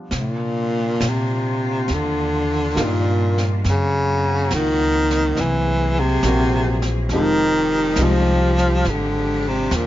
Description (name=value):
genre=jazz ballad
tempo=69 BPM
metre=4/4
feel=swing 69% on 8ths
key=C minor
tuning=A4 = 440 Hz
part: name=warm upright piano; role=accompaniment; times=0.0-9.9 s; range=Eb3 to G4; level=-25 LUFS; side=left 1 dB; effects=none
part: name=warm studio cello section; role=sustained chords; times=0.1-9.9 s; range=F3 to Ab4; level=-29 LUFS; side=left 2 dB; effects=none
part: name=upright bass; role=bass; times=0.1-9.9 s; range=F1 to C3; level=-22 LUFS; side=equal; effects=none
part: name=jazz brush drum kit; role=drums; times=0.1-9.9 s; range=brushed snare drum, hi-hat, snare drum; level=-31 LUFS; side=right 1 dB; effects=none
part: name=clear baritone saxophone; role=melody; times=0.2-9.9 s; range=Bb2 to F3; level=-19 LUFS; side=equal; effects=none
room=little or no reverb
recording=nothing above 7.5 kHz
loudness=-17 LUFS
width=side -14 dB against mid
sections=0.1-9.9 A section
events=none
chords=0.1 Cm11; 3.6 F#7#11; 7.1 Fm9